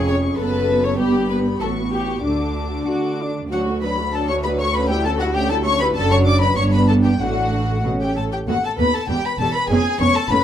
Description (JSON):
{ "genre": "quick classical-period movement for string orchestra", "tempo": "97 BPM", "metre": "2/4", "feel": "rubato", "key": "D major", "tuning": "A4 = 439 Hz", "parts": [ { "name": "warm symphonic violin section", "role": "melody", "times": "0.0-10.4 s", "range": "F#5 to D6", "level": "-24 LUFS", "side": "left 4 dB", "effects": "none" }, { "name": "warm symphonic violin section", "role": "second line", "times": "0.0-10.4 s", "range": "D4 to D5", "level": "-24 LUFS", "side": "left 3 dB", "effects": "none" }, { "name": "dark symphonic viola section", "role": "accompaniment", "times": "0.0-10.4 s", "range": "F#3 to A4", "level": "-22 LUFS", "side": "right 2 dB", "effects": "none" }, { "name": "rich symphonic cello section", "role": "bass", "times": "0.0-10.4 s", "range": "D2 to F#4", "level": "-24 LUFS", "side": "right 1 dB", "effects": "none" }, { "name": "rich symphonic double bass section", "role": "bass", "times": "0.0-10.4 s", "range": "E1 to D3", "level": "-25 LUFS", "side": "right 2 dB", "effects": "none" } ], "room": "moderate large studio reverb, RT60 0.9 s", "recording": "dark, warm production", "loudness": "-17 LUFS", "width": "side -10 dB against mid", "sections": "0.0-3.5 A section; 3.5-10.4 B section", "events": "none", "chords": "0.4 F#m; 1.0 G; 1.6 A7; 2.2 D; 4.8 A7/D; 6.0 D/F#; 6.6 G; 7.2 D/A; 7.8 A; 8.5 B7/D#; 9.1 Em; 9.7 C#7", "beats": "0.39 | 0.99 1.60 | 2.24 2.88 | 3.52 4.14 | 4.75 5.35 | 5.96 6.57 | 7.20 7.85 | 8.48 9.10 | 9.70 10.30" }